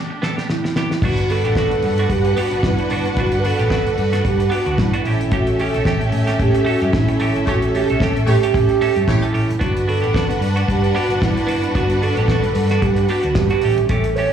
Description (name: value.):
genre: disco.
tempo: 112 BPM.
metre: 4/4.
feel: swing 56% on 16ths.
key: unclear.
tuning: A4 = 439 Hz.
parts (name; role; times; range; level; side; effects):
clear studio string section; sustained chords; 0.0-14.3 s; G3 to B4; -29 LUFS; right 1 dB; none.
semi-hollow electric guitar; accompaniment; 0.1-14.3 s; A3 to A4; -26 LUFS; right 4 dB; slapback echo.
damped 70s drum kit; drums; 0.2-14.3 s; crash cymbal, hi-hat, kick drum, snare drum; -23 LUFS; equal; slapback echo.
mellow hollow alto flute; melody; 0.5-14.3 s; E4 to C#5; -21 LUFS; right 4 dB; slapback echo.
warm studio violin section; second line; 1.0-13.6 s; C#4 to F#5; -24 LUFS; left 1 dB; slapback echo.
hollow-body short-scale fingered electric bass; bass; 1.0-14.2 s; F#1 to A2; -20 LUFS; equal; none.
warm horn section; stabs; 7.5-9.2 s; A3 to C#5; -28 LUFS; right 2 dB; slapback echo, tape echo.
room: light reverb, small room ambience.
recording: live gig heard through the venue's PA, club reverb, studio reverb.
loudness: -15 LUFS.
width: side -8 dB against mid.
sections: 0.0-1.0 A section; 1.0-14.3 B section.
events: break 0.0-1.0; drum fill 0.0-1.0; band accent 7.5-9.6.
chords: 0.0 A9sus4; 1.0 Gmaj7; 5.1 A7; 9.6 Gmaj7; 13.6 A7.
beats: 0.48 | 1.02 1.56 2.10 2.63 | 3.17 3.71 4.25 4.78 | 5.32 5.86 6.39 6.93 | 7.46 8.00 8.54 9.07 | 9.61 10.14 10.68 11.21 | 11.75 12.29 12.82 13.36 | 13.89.